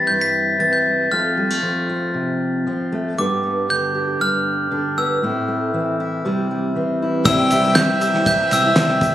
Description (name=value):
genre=indie folk with a building arrangement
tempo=117 BPM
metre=4/4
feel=straight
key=C major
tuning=A4 = 438 Hz
part: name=glockenspiel with brass mallets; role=melody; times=0.0-9.1 s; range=D6 to B6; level=-20 LUFS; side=equal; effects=none
part: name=fingerpicked steel-string acoustic guitar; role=accompaniment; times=0.0-9.1 s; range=F2 to G4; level=-22 LUFS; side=equal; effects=none
part: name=warm baby grand piano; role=accompaniment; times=7.2-9.1 s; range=C2 to E5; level=-25 LUFS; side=left 1 dB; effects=none
part: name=rich fiddle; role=second line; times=7.3-9.1 s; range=E5 to G5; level=-23 LUFS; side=left 2 dB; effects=none
part: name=picked steel-string acoustic guitar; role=accompaniment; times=7.3-9.1 s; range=C3 to G4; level=-24 LUFS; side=left 2 dB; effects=none
part: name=hand-pumped harmonium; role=sustained chords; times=7.3-9.1 s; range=C3 to E4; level=-29 LUFS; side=equal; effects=none
part: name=bright upright piano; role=arpeggios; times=7.3-9.1 s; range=E5 to E6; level=-24 LUFS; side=right 2 dB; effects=analog delay
part: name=fingered electric bass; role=bass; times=7.3-9.1 s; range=C2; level=-23 LUFS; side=right 1 dB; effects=none
part: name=cloth-damped thuddy drum kit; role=drums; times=7.3-9.1 s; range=kick drum, ride cymbal, snare drum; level=-21 LUFS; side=equal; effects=none
part: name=egg shaker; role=percussion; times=7.3-9.1 s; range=none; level=-32 LUFS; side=right 1 dB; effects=none
part: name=group handclap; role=percussion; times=7.8-8.9 s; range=none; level=-28 LUFS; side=right 1 dB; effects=none
room=light reverb, small room ambience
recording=recorded on a phone in the room, studio reverb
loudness=-16 LUFS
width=side -12 dB against mid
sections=0.0-7.3 A section; 7.3-9.1 B section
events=none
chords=0.0 C; 1.1 F; 3.2 G; 5.2 Am; 6.2 C